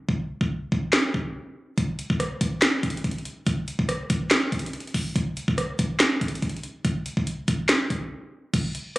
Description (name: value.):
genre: hip hop.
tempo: 142 BPM.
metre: 4/4.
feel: half-time.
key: none.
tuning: none.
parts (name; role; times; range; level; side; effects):
trap drum kit; drums; 0.1-9.0 s; crash cymbal, handclaps, hi-hat, kick drum, rim click, snare drum; -23 LUFS; equal; none.
room: wet digital room reverb, RT60 1.2 s, digital ambience.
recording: recorded on a phone in the room, club reverb, compression.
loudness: -23 LUFS.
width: side -19 dB against mid.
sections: 0.0-8.5 A section.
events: break 0.0-1.8, 8.1-8.5.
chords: none.